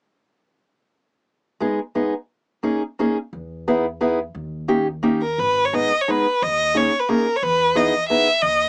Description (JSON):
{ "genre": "musette waltz", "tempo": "176 BPM", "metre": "3/4", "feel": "rubato", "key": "G# harmonic minor", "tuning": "A4 = 440 Hz", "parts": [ { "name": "fingerpicked steel-string acoustic guitar", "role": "accompaniment", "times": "1.6-8.3 s", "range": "G#3 to G#4", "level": "-19 LUFS", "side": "equal", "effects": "none" }, { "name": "upright bass", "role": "bass", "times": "3.3-8.7 s", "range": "G#1 to E2", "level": "-34 LUFS", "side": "equal", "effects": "none" }, { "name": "rich violin", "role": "melody", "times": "5.2-8.7 s", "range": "A#4 to E5", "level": "-17 LUFS", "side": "equal", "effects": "none" } ], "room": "light reverb", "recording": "small speaker sound", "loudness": "-18 LUFS", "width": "side -35 dB against mid", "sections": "1.3-5.4 A section; 5.4-8.7 B section", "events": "none", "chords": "1.3 G#m; 2.3 D#7sus4; 3.3 Emaj7; 4.3 D#7; 5.4 G#m; 6.4 D#7sus4; 7.4 Emaj7" }